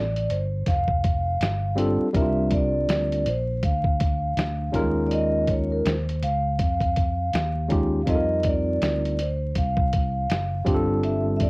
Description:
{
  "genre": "hip hop, jazz-hop",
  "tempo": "81 BPM",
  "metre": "4/4",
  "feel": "swing 62% on 16ths",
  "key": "unclear",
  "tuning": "A4 = 440 Hz",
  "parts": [
    { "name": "vibraphone with soft mallets", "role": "melody", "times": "0.0-11.5 s", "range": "Bb4 to F5", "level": "-27 LUFS", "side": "equal", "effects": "cassette tape" },
    { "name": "tine electric piano", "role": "accompaniment", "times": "0.0-11.5 s", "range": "G3 to Bb4", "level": "-24 LUFS", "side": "equal", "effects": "medium stereo tremolo, cassette tape" },
    { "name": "fingered electric bass", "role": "bass", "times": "0.0-11.5 s", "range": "F1 to F2", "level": "-26 LUFS", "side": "equal", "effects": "none" },
    { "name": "dusty soul sampler-style drum kit", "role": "drums", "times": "0.2-11.5 s", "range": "hi-hat, kick drum, snare drum", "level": "-26 LUFS", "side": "equal", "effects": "cassette tape" }
  ],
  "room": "light reverb",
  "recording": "home recording on cassette, vinyl crackle",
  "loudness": "-21 LUFS",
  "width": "side -28 dB against mid",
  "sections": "0.0-11.5 A section",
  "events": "none",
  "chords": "0.0 G9sus4; 2.1 C9sus4; 4.7 Eb9sus4; 8.1 F9sus4; 10.7 G9sus4"
}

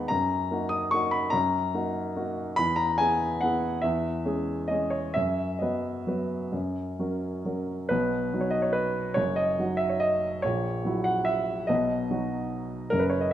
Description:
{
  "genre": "classical, piano waltz",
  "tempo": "127-155 BPM",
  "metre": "3/4",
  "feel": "rubato",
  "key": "B major",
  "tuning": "A4 = 440 Hz",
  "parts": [
    { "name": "warm grand piano", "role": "solo", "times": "0.0-13.3 s", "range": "F#1 to D#6", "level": "-25 LUFS", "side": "equal", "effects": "none" }
  ],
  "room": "moderate recital hall reverb, RT60 1.4 s",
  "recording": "minimal, uncompressed stereo recording",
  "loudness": "-25 LUFS",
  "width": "side -11 dB against mid",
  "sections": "0.0-7.9 A section; 7.9-13.3 B section",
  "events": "none",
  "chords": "0.1 D#m/F#; 2.6 E; 3.8 C#m/E; 5.2 B/F#; 6.5 F#; 7.9 B; 10.4 F#7/A#; 11.7 B"
}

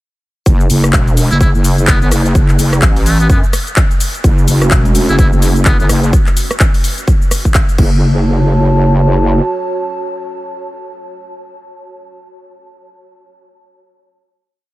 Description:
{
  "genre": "bass house",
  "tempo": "127 BPM",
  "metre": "4/4",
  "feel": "swing 59% on 16ths",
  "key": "F# minor",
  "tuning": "A4 = 438 Hz",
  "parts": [
    { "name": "wobble bass", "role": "bass", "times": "0.5-9.4 s", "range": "E1 to F#2", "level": "-11 LUFS", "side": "equal", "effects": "chorus, overdrive, sidechain pumping" },
    { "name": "electronic kick drum", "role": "drums", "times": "0.5-7.9 s", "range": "none", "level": "-12 LUFS", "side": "equal", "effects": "small room ambience" },
    { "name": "house drum kit", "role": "drums", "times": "0.5-7.9 s", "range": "crash cymbal, handclaps, hi-hat, rim click, shaker", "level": "-18 LUFS", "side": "left 1 dB", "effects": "small room ambience" },
    { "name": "trumpet with metal mute", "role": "melody", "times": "1.3-5.9 s", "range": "A3 to E4", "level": "-24 LUFS", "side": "equal", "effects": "diffuse ambient delay" },
    { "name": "dark analog pad", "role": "sustained chords", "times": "4.2-12.1 s", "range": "A3 to A5", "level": "-20 LUFS", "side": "right 2 dB", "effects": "chorus, sidechain pumping" }
  ],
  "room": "little or no reverb",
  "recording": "none",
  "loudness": "-9 LUFS",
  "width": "side -18 dB against mid",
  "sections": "0.5-8.0 drop; 8.0-11.8 final hit",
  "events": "drop 0.5-8.0",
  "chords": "0.5 F#m"
}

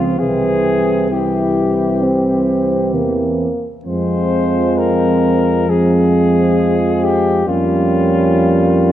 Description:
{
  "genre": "classical, hymn-like piece for brass band",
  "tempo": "66 BPM",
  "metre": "4/4",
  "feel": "rubato",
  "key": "F minor",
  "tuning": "A4 = 440 Hz",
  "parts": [
    { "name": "warm flugelhorn", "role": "melody", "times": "0.0-8.9 s", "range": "F4 to C5", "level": "-18 LUFS", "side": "left 4 dB", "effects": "none" },
    { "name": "warm French horn section", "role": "second line", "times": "0.0-8.9 s", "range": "C4 to Db4", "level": "-20 LUFS", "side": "right 6 dB", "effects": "none" },
    { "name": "warm euphonium", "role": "accompaniment", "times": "0.0-8.9 s", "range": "Ab3 to E4", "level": "-20 LUFS", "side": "left 2 dB", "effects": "none" },
    { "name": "warm trombone", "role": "accompaniment", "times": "0.0-8.9 s", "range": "E3 to G3", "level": "-20 LUFS", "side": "right 2 dB", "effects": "none" },
    { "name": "mellow tuba", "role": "bass", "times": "0.0-8.9 s", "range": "C2 to F2", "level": "-19 LUFS", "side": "equal", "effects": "none" }
  ],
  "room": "moderate concert hall reverb, RT60 2.0 s",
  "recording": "worn, warbling old tape, cassette tape, warbly pitch drift",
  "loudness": "-12 LUFS",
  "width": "side -12 dB against mid",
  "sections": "0.0-8.9 A section",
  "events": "none",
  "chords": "0.2 C; 3.9 Fm; 7.5 Gm7b5/F"
}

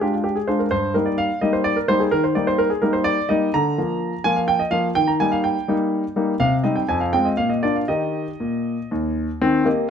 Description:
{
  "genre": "classical-period piano sonatina",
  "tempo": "116-131 BPM",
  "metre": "3/4",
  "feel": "rubato",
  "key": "Eb major",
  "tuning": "A4 = 441 Hz",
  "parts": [
    { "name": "clear grand piano", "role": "solo", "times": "0.0-9.9 s", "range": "Eb2 to Bb5", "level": "-18 LUFS", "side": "equal", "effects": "none" }
  ],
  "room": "moderate stone room reverb, RT60 1.4 s",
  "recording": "dark, warm production",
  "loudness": "-18 LUFS",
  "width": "side -7 dB against mid",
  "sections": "0.0-9.4 A section",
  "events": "none",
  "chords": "0.0 Bb13; 0.7 Eb/G; 2.1 Eb; 3.5 Bb/D; 5.0 Eb; 6.4 Cm; 6.9 Fm; 7.4 Bb; 7.9 Eb"
}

